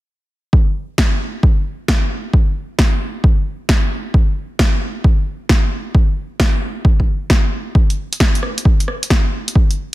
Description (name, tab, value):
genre	UK garage, two-step garage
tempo	133 BPM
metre	4/4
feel	swing 66% on 16ths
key	none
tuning	none
part	electronic kick drum	drums	0.5-9.7 s	none	-13 LUFS	equal	overdrive
part	punchy analog drum machine	drums	1.0-9.8 s	hi-hat, rim click, snare drum	-20 LUFS	equal	overdrive
room	little or no reverb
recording	dense, heavily limited modern master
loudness	-14 LUFS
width	side -17 dB against mid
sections	0.5-9.9 A section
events	none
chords	none